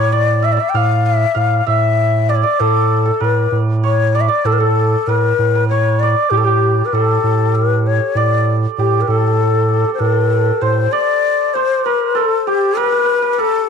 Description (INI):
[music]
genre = Persian modal ensemble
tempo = 65 BPM (dotted quarters)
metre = 6/8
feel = straight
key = A dastgah homayun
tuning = A4 = 441 Hz
[part]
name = breathy ney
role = melody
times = 0.0-13.7 s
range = G4 to G5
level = -16 LUFS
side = left 10 dB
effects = none
[part]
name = santur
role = second line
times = 0.0-13.7 s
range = G4 to F5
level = -19 LUFS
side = right 17 dB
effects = none
[part]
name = saturated sub bass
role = bass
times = 0.0-10.9 s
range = A2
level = -16 LUFS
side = right 2 dB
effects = none
[sound]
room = little or no reverb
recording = 1960s-style stereo with parts hard left and right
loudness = -13 LUFS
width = side -6 dB against mid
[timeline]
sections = 0.0-10.9 A section; 10.9-13.7 B section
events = none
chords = none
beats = 0.75 | 1.68 2.60 | 3.53 4.46 | 5.38 6.31 | 7.24 8.16 | 9.09 10.01 | 10.94 11.86 | 12.78